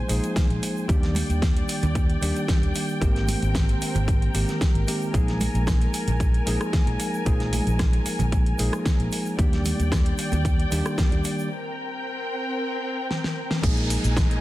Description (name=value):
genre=nu-disco, nu disco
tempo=113 BPM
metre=4/4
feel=straight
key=Bb mixolydian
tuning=A4 = 440 Hz
part: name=bell-like tine electric piano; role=accompaniment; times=0.0-14.4 s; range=Eb3 to Ab4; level=-28 LUFS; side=equal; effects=analog delay
part: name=muted studio violin section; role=sustained chords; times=0.0-14.4 s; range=C4 to Ab5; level=-32 LUFS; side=left 1 dB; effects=sidechain pumping
part: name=fingered electric bass with an envelope filter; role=bass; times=0.1-14.4 s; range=Ab1 to Eb2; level=-25 LUFS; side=equal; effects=sidechain pumping
part: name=pop drum kit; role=drums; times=0.1-14.4 s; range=cabasa, crash cymbal, hi-hat, rim click, snare drum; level=-30 LUFS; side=equal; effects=studio reverb
part: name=egg shaker and congas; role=percussion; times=0.1-11.5 s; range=none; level=-34 LUFS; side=right 4 dB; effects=none
part: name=electronic kick drum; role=drums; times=0.4-14.3 s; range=none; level=-22 LUFS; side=equal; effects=studio reverb
part: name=downlifter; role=sound effects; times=13.6-14.4 s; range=none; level=-33 LUFS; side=right 3 dB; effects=none
room=digital ambience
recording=dense, heavily limited modern master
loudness=-21 LUFS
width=side -16 dB against mid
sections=0.0-13.6 A section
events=break 11.5-13.6; drum fill 13.1-13.6; band accent 13.5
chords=0.0 Bb7sus4; 0.9 Ebmaj7; 3.0 Abmaj9; 5.1 Bb7sus4; 9.4 Ebmaj7; 11.5 Gmadd11/C; 13.6 Bb7sus4